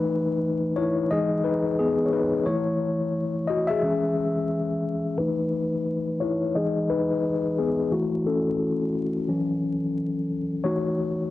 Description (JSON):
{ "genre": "hip hop", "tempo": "88 BPM", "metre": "4/4", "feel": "swing 58% on 16ths", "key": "E major", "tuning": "A4 = 439 Hz", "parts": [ { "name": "mellow tine electric piano", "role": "solo", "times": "0.0-11.3 s", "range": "E3 to E5", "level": "-23 LUFS", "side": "left 2 dB", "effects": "medium stereo tremolo, cassette tape, low-pass filter" } ], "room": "wet booth ambience, RT60 0.2 s", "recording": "home recording on cassette, vinyl crackle, nothing above 10.6 kHz", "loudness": "-23 LUFS", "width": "side -15 dB against mid", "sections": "0.0-5.2 A section; 5.2-11.3 B section", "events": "tine electric piano solo 0.0-5.2, 5.2-11.3; filter sweep on tine electric piano 5.2-11.3", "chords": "0.0 B7/E; 1.1 Emaj7; 2.5 F#m7/E; 3.8 E6; 5.2 B7/E; 6.5 Emaj7; 7.9 A/E; 10.6 F#m13/E" }